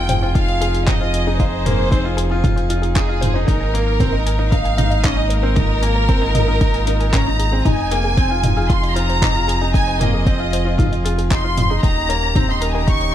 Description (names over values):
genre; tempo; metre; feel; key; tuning
piano and strings electronica; 115 BPM; 4/4; straight; F minor; A4 = 440 Hz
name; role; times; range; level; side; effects
rich studio violin section; melody; 0.0-13.1 s; Ab4 to Db6; -22 LUFS; right 1 dB; none
warm string quartet; sustained chords; 0.0-13.1 s; Eb3 to Ab4; -27 LUFS; equal; none
wide unison pluck; arpeggios; 0.0-13.1 s; Eb4 to Bb5; -30 LUFS; left 3 dB; sidechain pumping, tape echo
bright grand piano; riff; 0.0-13.1 s; Bb3 to F4; -24 LUFS; equal; none
round analog bass; bass; 0.0-13.1 s; Eb1 to Ab1; -20 LUFS; equal; sidechain pumping
deep house drum kit; drums; 0.1-13.1 s; handclaps, hi-hat, toms; -23 LUFS; equal; none
electronic kick drum; drums; 0.4-13.0 s; none; -18 LUFS; equal; none
room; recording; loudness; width
light reverb; dark, warm production; -15 LUFS; side -11 dB against mid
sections
0.0-13.1 A section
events
none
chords
0.0 Fm7; 3.5 Absus2; 7.7 Fm7; 11.8 Eb7